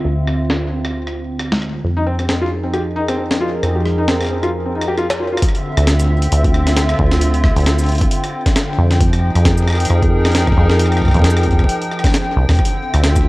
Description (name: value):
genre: IDM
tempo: 134 BPM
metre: 4/4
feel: swing 56% on 16ths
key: D minor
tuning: A4 = 437 Hz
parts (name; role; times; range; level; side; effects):
- hollow soft pad; sustained chords; 0.0-13.3 s; D3 to G5; -21 LUFS; equal; chorus
- deep acid bass; bass; 0.0-13.3 s; C2 to F2; -16 LUFS; equal; none
- jungle sampler-style drum kit; drums; 0.3-13.2 s; cabasa, hi-hat, rim click, snare drum; -22 LUFS; equal; overdrive, low-pass filter on snare, low-pass filter on hats, low-pass filter on perc, low-pass filter on room
- felt-muted upright piano; arpeggios; 2.0-5.4 s; C4 to G4; -21 LUFS; left 1 dB; dub echo
- electronic kick drum; drums; 5.4-13.2 s; none; -15 LUFS; equal; overdrive
room: little or no reverb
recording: worn, warbling old tape, cassette tape, warbly pitch drift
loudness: -13 LUFS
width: side -20 dB against mid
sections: 0.0-5.4 A section; 5.4-13.3 B section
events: filter sweep on analog synth pad 0.0-5.4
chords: 0.0 Dm11; 1.8 Fm11; 5.4 Dm11; 9.0 Fm11; 12.6 Dm11